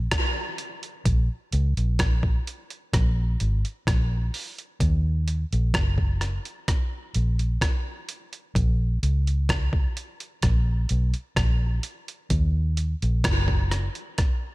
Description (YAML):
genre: dub reggae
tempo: 64 BPM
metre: 4/4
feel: straight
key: Eb minor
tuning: A4 = 440 Hz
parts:
  - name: vintage muted fingered electric bass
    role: bass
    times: 0.0-13.9 s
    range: Gb1 to Eb2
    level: -22 LUFS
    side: equal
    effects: none
  - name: dusty soul sampler-style drum kit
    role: drums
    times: 0.1-14.4 s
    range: hi-hat, kick drum, rim click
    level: -25 LUFS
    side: equal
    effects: overdrive
room: digital ambience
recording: none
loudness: -22 LUFS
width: side -20 dB against mid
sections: 0.0-14.5 A section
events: none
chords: none